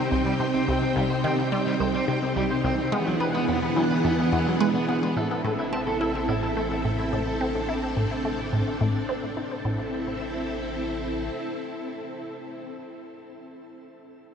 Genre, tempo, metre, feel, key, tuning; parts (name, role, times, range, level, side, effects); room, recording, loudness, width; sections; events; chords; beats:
ambient, sequencer-driven space music; 107 BPM; 4/4; straight; A minor from 5.2 s; A4 = 440 Hz
string machine, full ensemble; sustained chords; 0.0-12.7 s; C3 to G5; -27 LUFS; equal; ensemble chorus, shimmer reverb
electric guitar at the edge of break-up; arpeggios; 0.0-9.9 s; F#3 to A5; -31 LUFS; right 1 dB; auto-pan, ping-pong delay, shimmer reverb
resonant blip pluck; riff; 0.0-9.9 s; C2 to E4; -28 LUFS; equal; phaser, ping-pong delay, shimmer reverb
round analog bass; bass; 5.2-11.3 s; A1; -38 LUFS; equal
wet huge ambient reverb, RT60 8.7 s; cassette tape; -23 LUFS; side -7 dB against mid
0.0-5.2 A section; 5.2-9.7 B section; 9.7-11.9 C section
fade-out on clean electric guitar 5.2-9.7; fade-out on analog synth bass 5.2-9.7; filter sweep on synth arpeggio sound 5.2-9.7
0.0 Cm; 2.9 E7; 5.2 Am
0.12 | 0.68 1.24 1.80 2.36 | 2.92 3.48 4.04 4.61 | 5.17 5.73 6.29 6.85 | 7.41 7.97 8.53 9.09 | 9.65 10.21 10.77 11.33